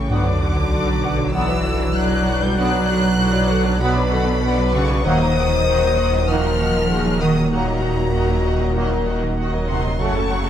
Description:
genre	cinematic, hybrid orchestral and electronic film score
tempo	97 BPM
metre	4/4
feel	straight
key	unclear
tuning	A4 = 444 Hz
part	warm symphonic violin section	melody	0.0-10.5 s	G5 to G6	-27 LUFS	left 2 dB	none
part	chorused pulse-width pad	sustained chords	0.0-10.5 s	D#3 to F#5	-27 LUFS	left 1 dB	none
part	rich symphonic cello section	bass	0.0-10.5 s	A#2 to G3	-23 LUFS	right 2 dB	none
part	saturated sub bass	bass	0.0-10.5 s	D#1 to B1	-25 LUFS	equal	none
part	warm symphonic violin section	second line	0.1-10.5 s	A4 to A5	-28 LUFS	left 3 dB	none
part	rich symphonic viola section	accompaniment	0.1-10.5 s	D3 to F#4	-27 LUFS	right 2 dB	none
part	dark trombone section	sustained chords	0.1-10.2 s	D#3 to B3	-28 LUFS	right 2 dB	none
part	mellow French horn section	sustained chords	0.1-9.7 s	D4 to C5	-25 LUFS	left 5 dB	none
part	dark symphonic double bass section	bass	0.1-10.5 s	F#1 to D#2	-25 LUFS	right 3 dB	none
part	sub drop	sound effects	0.1-2.6 s	none	-25 LUFS	equal	none
room	light reverb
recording	none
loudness	-16 LUFS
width	side -10 dB against mid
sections	0.1-10.5 A section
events	impact 0.1-2.6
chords	0.1 Bm; 5.0 D#m; 10.0 F#m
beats	| 0.10 0.72 1.34 1.96 | 2.58 3.19 3.81 4.43 | 5.05 5.67 6.29 6.91 | 7.52 8.14 8.76 9.38 | 10.00

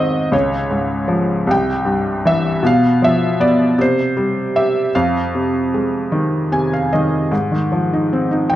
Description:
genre	classical, lyrical solo piano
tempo	52 BPM (dotted quarters)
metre	6/8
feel	rubato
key	F minor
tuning	A4 = 440 Hz
part	felt-muted upright piano	solo	0.0-8.6 s	C2 to Ab5	-14 LUFS	equal	none
room	moderate scoring stage reverb, RT60 1.6 s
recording	dark, warm production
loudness	-14 LUFS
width	side -13 dB against mid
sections	0.0-7.3 A section; 7.3-8.6 B section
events	felt piano fill 6.1-7.3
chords	0.3 Db; 1.5 C; 2.6 Bdim; 3.8 C5; 4.9 Fm7; 7.3 Ab6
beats	| 0.34 1.50 | 2.64 3.79 | 4.94 6.12 | 7.32 8.51

